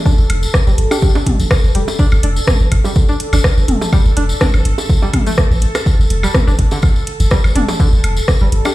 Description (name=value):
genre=minimal techno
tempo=124 BPM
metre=4/4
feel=swing 54% on 16ths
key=unclear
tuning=A4 = 438 Hz
part: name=bubbling stepped-filter texture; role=texture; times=0.0-8.7 s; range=A4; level=-25 LUFS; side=right 1 dB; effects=chorus, built-in reverb, sidechain pumping
part: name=string-like resonator pluck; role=riff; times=0.1-8.7 s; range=D3 to D4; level=-23 LUFS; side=equal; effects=chorus, sidechain pumping, dub echo
part: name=electronic kick drum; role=drums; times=0.1-8.4 s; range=none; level=-13 LUFS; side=equal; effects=none
part: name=tambourine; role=percussion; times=0.1-8.7 s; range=none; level=-27 LUFS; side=left 3 dB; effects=none
part: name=punchy sub bass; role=bass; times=0.2-8.6 s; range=F1 to A1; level=-14 LUFS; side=equal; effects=tube saturation, sidechain pumping
part: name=garage drum kit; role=drums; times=0.3-8.6 s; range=hi-hat, rim click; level=-20 LUFS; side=equal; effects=none
part: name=electronic woodblock, bongos and toms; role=percussion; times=0.3-8.7 s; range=none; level=-22 LUFS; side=equal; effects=dub echo
part: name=soft struck synth lead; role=melody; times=0.9-1.1, 8.7 s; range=G4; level=-22 LUFS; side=left 1 dB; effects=chorus, dub echo
room=light reverb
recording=played on a big sound system in a bare room, stone room reverb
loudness=-11 LUFS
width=side -17 dB against mid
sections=0.0-8.7 A section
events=none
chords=none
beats=| 0.06 0.54 1.02 1.51 | 1.99 2.48 2.96 3.44 | 3.93 4.41 4.89 5.38 | 5.86 6.35 6.83 7.31 | 7.80 8.28